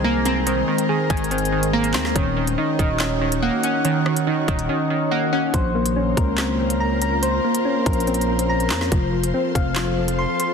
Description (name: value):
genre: hip hop, drill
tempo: 142 BPM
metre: 4/4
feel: half-time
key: Bb minor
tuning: A4 = 440 Hz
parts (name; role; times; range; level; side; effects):
- glassy wavetable pluck; accompaniment; 0.0-5.5 s; Eb3 to Db4; -23 LUFS; right 2 dB; chorus
- ethereal airy pad; sustained chords; 0.0-10.5 s; Eb3 to Db5; -26 LUFS; equal; ensemble chorus, built-in reverb
- soft electric-piano-like synth keys; arpeggios; 0.0-10.5 s; F3 to C6; -23 LUFS; left 1 dB; chorus, digital delay
- growling 808-style bass; bass; 0.0-10.3 s; Eb1 to F2; -24 LUFS; equal; none
- drill drum kit; drums; 0.3-10.5 s; handclaps, hi-hat, kick drum, rim click, snare drum; -24 LUFS; equal; none
room: light reverb, digital ambience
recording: dense, heavily limited modern master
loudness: -18 LUFS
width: side -6 dB against mid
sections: 0.0-5.5 A section; 5.5-10.5 A section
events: drums muted 4.7-5.5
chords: 0.0 Abadd9; 2.2 Ebm7; 5.5 Bbmadd9; 8.9 F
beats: 0.04 | 0.47 0.89 1.31 1.74 | 2.16 2.58 3.00 3.42 | 3.85 4.27 4.69 5.12 | 5.54 5.96 6.38 6.80 | 7.23 7.65 8.07 8.50 | 8.92 9.34 9.76 10.19